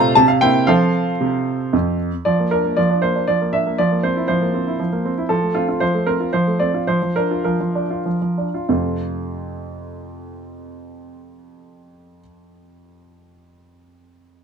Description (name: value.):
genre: classical-period piano sonatina.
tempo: 92-120 BPM.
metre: 3/4.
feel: straight.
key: F major.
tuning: A4 = 440 Hz.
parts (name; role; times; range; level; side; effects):
clear baby grand piano; solo; 0.0-14.4 s; F2 to Bb5; -16 LUFS; right 1 dB; none.
room: moderate studio reverb, RT60 0.8 s.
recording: dark, warm production.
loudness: -16 LUFS.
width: side -6 dB against mid.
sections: 0.0-2.3 A section; 2.3-8.7 B section; 8.7-12.6 C section.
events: slowing down 4.5-8.7.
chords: 0.2 C7; 0.7 F; 2.3 Bb/F; 5.3 F; 6.9 Bb/F; 8.7 F.